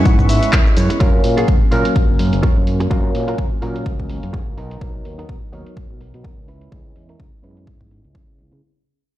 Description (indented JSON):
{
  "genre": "filtered disco house",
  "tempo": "126 BPM",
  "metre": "4/4",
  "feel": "swing 56% on 16ths",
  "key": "F# major",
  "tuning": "A4 = 440 Hz",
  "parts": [
    { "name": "overdriven tine electric piano", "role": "accompaniment", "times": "0.0-8.6 s", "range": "F#3 to E#5", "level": "-22 LUFS", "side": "equal", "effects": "phaser, sidechain pumping, low-pass filter" },
    { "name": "rich chamber string section", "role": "sustained chords", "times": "0.0-1.0 s", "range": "B4 to C#6", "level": "-27 LUFS", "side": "left 3 dB", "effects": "vintage 12-bit sampler grit, sidechain pumping, low-pass filter" },
    { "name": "direct-recorded clean electric guitar", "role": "riff", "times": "0.0-8.6 s", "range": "B3 to F#5", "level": "-26 LUFS", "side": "right 3 dB", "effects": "sidechain pumping, low-pass filter" },
    { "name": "modern bright fingered electric bass", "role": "bass", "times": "0.0-8.6 s", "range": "F#1 to C#3", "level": "-21 LUFS", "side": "equal", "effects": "sidechain pumping, low-pass filter" },
    { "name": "electronic kick drum", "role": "drums", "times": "0.1-8.3 s", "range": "none", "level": "-17 LUFS", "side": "equal", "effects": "overdrive" },
    { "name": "punchy analog drum machine", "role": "drums", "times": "0.1-8.6 s", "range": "handclaps, hi-hat, shaker", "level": "-26 LUFS", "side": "equal", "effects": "overdrive, sidechain pumping on hats, low-pass filter on hats, sidechain pumping on perc, low-pass filter on perc, low-pass filter on snare" }
  ],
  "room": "digital ambience",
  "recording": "played on a big sound system in a bare room, stone room reverb",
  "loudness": "-14 LUFS",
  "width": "side -14 dB against mid",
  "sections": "0.0-8.6 A section",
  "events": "fade-out 0.0-8.6; clean electric guitar fill 0.0-1.0; filter sweep 0.0-8.6",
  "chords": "0.0 C#m7; 1.0 F#maj7; 4.6 Bmaj7; 6.5 C#m7"
}